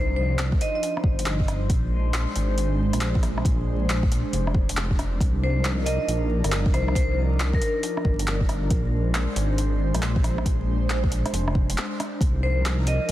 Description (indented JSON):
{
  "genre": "future garage",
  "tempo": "137 BPM",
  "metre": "4/4",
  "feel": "swing 65% on 16ths",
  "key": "C minor",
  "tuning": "A4 = 438 Hz",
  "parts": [
    { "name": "vibraphone with medium hard mallets", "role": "melody", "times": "0.0-0.8, 5.4-8.1, 12.4-13.1 s", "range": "Bb4 to Eb5", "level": "-30 LUFS", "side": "left 1 dB", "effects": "dub echo" },
    { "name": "airy breathy pad", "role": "sustained chords", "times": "0.0-13.1 s", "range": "F3 to C5", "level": "-30 LUFS", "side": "equal", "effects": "chorus, phaser, sidechain pumping" },
    { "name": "dark detuned saw bass", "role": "bass", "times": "0.0-13.1 s", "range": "F1 to C2", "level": "-24 LUFS", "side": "equal", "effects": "sidechain pumping" },
    { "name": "deep house drum kit", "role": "drums", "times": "0.4-13.1 s", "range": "handclaps, hi-hat, rim click", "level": "-30 LUFS", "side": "equal", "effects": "none" },
    { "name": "electronic kick drum", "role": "drums", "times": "0.5-12.3 s", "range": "none", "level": "-24 LUFS", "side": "equal", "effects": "none" }
  ],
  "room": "light reverb",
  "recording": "dense, heavily limited modern master, vinyl crackle",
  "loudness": "-21 LUFS",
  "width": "side -14 dB against mid",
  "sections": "0.0-13.1 A section",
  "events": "break 11.8-12.2",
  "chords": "0.0 Cmadd9; 1.7 Bb9; 5.2 Cm11; 8.7 Bb9; 12.2 Cm11",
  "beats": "0.39 0.82 1.26 | 1.70 2.14 2.58 3.02 | 3.45 3.89 4.33 4.77 | 5.20 5.64 6.08 6.52 | 6.96 7.39 7.83 8.27 | 8.71 9.15 9.58 10.02 | 10.46 10.90 11.34 11.77 | 12.21 12.65 13.09"
}